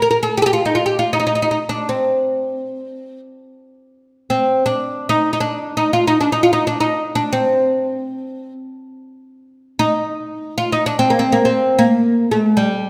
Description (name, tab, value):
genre	Arabic maqam ensemble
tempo	free time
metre	none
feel	none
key	unclear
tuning	A4 = 440 Hz
part	oud	solo	0.0-12.9 s	G3 to Bb4	-18 LUFS	equal	none
room	wet recital hall reverb, RT60 1.7 s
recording	none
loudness	-17 LUFS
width	mono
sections	0.0-12.9 A section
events	none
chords	none